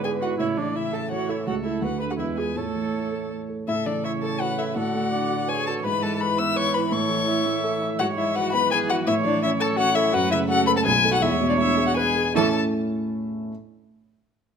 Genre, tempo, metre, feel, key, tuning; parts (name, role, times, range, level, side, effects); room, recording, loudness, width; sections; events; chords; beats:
quick classical-period movement for piano quintet; 167 BPM; 3/4; straight; A major; A4 = 441 Hz
muted violin; melody; 0.0-12.6 s; D5 to E6; -25 LUFS; left 6 dB
muted cello; second line; 0.0-12.6 s; C#3 to A3; -30 LUFS; right 13 dB
muted violin; second line; 0.0-12.6 s; D4 to E5; -30 LUFS; left 2 dB
dark concert grand piano; accompaniment; 0.0-13.5 s; B1 to E5; -26 LUFS; equal
muted viola; accompaniment; 0.0-12.6 s; C#4 to E5; -30 LUFS; right 6 dB
moderate recital hall reverb, RT60 1.4 s; close, detailed microphones; -21 LUFS; side -7 dB against mid
0.0-3.7 A section; 3.7-12.4 A section; 12.4-13.5 B section
0.4 A; 1.5 A/C#; 1.8 Bm7/D; 2.2 E; 2.6 A; 4.8 Bm7/A; 5.8 E/G#; 6.9 A; 8.0 E/G#; 9.1 A; 10.1 F#m; 10.9 B7; 11.2 E7; 12.4 A
0.04 | 0.40 0.76 1.11 | 1.47 1.83 2.19 | 2.57 2.94 3.31 | 3.68 4.04 4.41 | 4.77 5.13 5.49 | 5.85 6.21 6.57 | 6.92 7.28 7.64 | 7.99 8.35 8.71 | 9.06 9.42 9.78 | 10.13 10.49 10.85 | 11.22 11.59 11.97 | 12.35 12.73 13.11